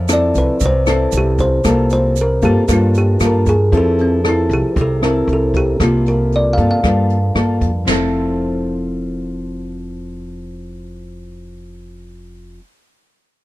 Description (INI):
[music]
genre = bossa nova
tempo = 116 BPM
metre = 4/4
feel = straight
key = F major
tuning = A4 = 441 Hz
[part]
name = kalimba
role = melody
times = 0.0-7.4 s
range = C4 to F5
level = -18 LUFS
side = equal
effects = none
[part]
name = nylon-string guitar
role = accompaniment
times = 0.0-12.7 s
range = G2 to A4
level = -19 LUFS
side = left 1 dB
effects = none
[part]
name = upright bass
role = bass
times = 0.0-12.6 s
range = F1 to G2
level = -19 LUFS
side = equal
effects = none
[part]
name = jazz brush drum kit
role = drums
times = 0.1-8.0 s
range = china cymbal, hi-hat, kick drum, rim click, snare drum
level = -21 LUFS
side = equal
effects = none
[part]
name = tube shaker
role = percussion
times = 0.1-3.7 s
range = none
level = -29 LUFS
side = right 25 dB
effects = none
[sound]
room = little or no reverb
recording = none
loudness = -13 LUFS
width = side -17 dB against mid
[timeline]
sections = 0.0-7.9 A section; 7.9-12.0 B section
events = kalimba solo 0.0-7.9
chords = 0.0 Fmaj7; 1.6 C7sus4; 3.7 Fmaj7; 5.8 C7sus4; 7.9 Fmaj7